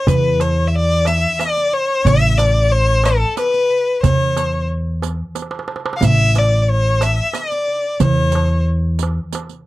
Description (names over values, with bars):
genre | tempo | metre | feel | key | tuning
Arabic maqam ensemble | 91 BPM | 3/4 | straight | unclear | A4 = 440 Hz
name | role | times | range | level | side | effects
clear violin | melody | 0.0-8.6 s | A4 to F5 | -17 LUFS | left 2 dB | none
upright bass | bass | 0.1-9.2 s | A1 to E2 | -17 LUFS | equal | none
darbuka | percussion | 0.1-9.6 s | none | -20 LUFS | right 3 dB | none
riq | percussion | 0.1-9.6 s | none | -26 LUFS | right 16 dB | none
room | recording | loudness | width
little or no reverb | dry, close 1970s-style studio recording | -14 LUFS | side -17 dB against mid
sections
0.0-9.7 A section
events
drum fill 5.4-6.0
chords
none